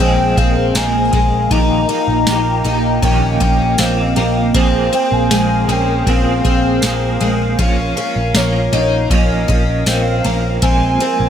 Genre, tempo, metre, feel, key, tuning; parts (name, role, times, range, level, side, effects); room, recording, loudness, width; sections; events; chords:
dream pop; 79 BPM; 4/4; straight; A4 = 441 Hz
warbly nostalgic lead; melody; 0.0-11.3 s; Db5 to Bb5; -20 LUFS; equal; chorus, tremolo, tape echo
semi-hollow electric guitar; accompaniment; 0.0-11.3 s; Bb2 to Ab4; -22 LUFS; right 3 dB; tremolo, ensemble chorus
hollow soft pad; sustained chords; 0.0-11.3 s; Bb3 to Ab5; -21 LUFS; right 1 dB; ensemble chorus
picked twelve-string acoustic guitar; arpeggios; 0.0-11.3 s; Ab3 to Eb4; -19 LUFS; left 3 dB; wide subtle chorus, tape echo
vintage muted picked electric bass; bass; 0.0-11.3 s; Bb1; -18 LUFS; equal
booming analog drum machine; drums; 0.4-11.2 s; kick drum, ride cymbal, snare drum, tambourine; -19 LUFS; equal; overdrive
moderate spring reverb, RT60 1.7 s, digital ambience; echo-heavy mix; -12 LUFS; side -9 dB against mid
0.0-11.3 A section
0.0 Fm/Bb; 1.5 Ebadd9/Bb; 4.6 Fm/Bb; 7.6 Bbm; 10.6 Fm/Bb